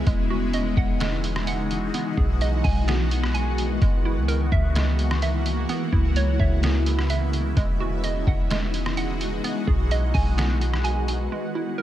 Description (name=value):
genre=hip hop, atmospheric cloud-rap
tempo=128 BPM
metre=4/4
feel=half-time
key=B major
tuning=A4 = 440 Hz
part: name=shimmering ambient pad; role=sustained chords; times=0.0-11.8 s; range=C#3 to F#4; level=-27 LUFS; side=left 1 dB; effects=chorus, built-in reverb, phaser, sidechain pumping
part: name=hollow square pluck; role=arpeggios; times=0.0-11.8 s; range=G#3 to G#5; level=-31 LUFS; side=right 6 dB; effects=chorus, low-pass filter, digital delay
part: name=clean 808-style bass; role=bass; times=0.0-11.3 s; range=E1 to C#2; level=-23 LUFS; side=equal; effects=none
part: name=trip hop sampler-style drum kit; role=drums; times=0.1-11.2 s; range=hi-hat, kick drum, rim click, snare drum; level=-27 LUFS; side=equal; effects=none
room=light reverb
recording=none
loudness=-21 LUFS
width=side -12 dB against mid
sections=0.0-11.3 A section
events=none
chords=0.1 Emaj9; 1.9 B6; 3.8 F#9; 5.7 C#m7; 7.6 Emaj9; 9.4 B6; 11.3 F#9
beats=| 0.07 0.54 1.00 1.47 | 1.94 2.41 2.88 3.35 | 3.82 4.29 4.75 5.22 | 5.69 6.16 6.63 7.10 | 7.57 8.04 8.50 8.97 | 9.44 9.91 10.38 10.85 | 11.32 11.79